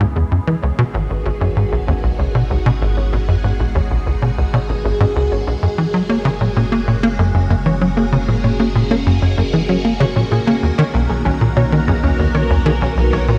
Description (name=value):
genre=ambient, sequencer-driven space music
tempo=96 BPM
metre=4/4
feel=straight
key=unclear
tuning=A4 = 438 Hz
part: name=phased string machine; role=sustained chords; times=0.0-13.4 s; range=C#3 to A#4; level=-25 LUFS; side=equal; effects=ensemble chorus, phaser
part: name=unison pluck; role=arpeggios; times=0.0-13.4 s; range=C#4 to C#5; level=-30 LUFS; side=equal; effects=vintage 12-bit sampler grit, tape echo
part: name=tight sequencer bass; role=riff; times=0.0-13.4 s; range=G#1 to A#3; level=-18 LUFS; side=equal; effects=analog chorus, tape echo
part: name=warm sub bass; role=bass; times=0.0-13.4 s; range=F#1 to C#2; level=-26 LUFS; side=equal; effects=none
room=moderate scoring stage reverb, RT60 2.2 s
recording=none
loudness=-17 LUFS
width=mono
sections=0.0-13.4 A section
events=fade-in on synth arpeggio sound 0.0-13.4; fade-in on string machine 0.0-13.4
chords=0.0 C#m7; 0.6 G#m7; 5.6 F#add9; 10.6 Bmaj7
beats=0.00 | 0.63 1.25 1.88 2.50 | 3.13 3.75 4.38 5.00 | 5.63 6.25 6.88 7.50 | 8.13 8.75 9.38 10.00 | 10.63 11.25 11.88 12.50 | 13.13